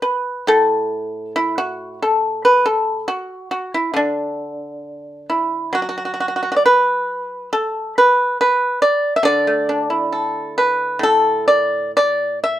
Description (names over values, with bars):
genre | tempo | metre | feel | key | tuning
chinese traditional, Chinese solo plucked strings | 69 BPM | 2/4 | rubato | D gong mode | A4 = 439 Hz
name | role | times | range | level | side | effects
pipa | solo | 0.0-12.6 s | A2 to E5 | -16 LUFS | equal | none
room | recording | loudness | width
light reverb | band playing live in one room | -16 LUFS | side -12 dB against mid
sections
0.0-5.7 A section; 5.7-12.6 B section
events
none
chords
none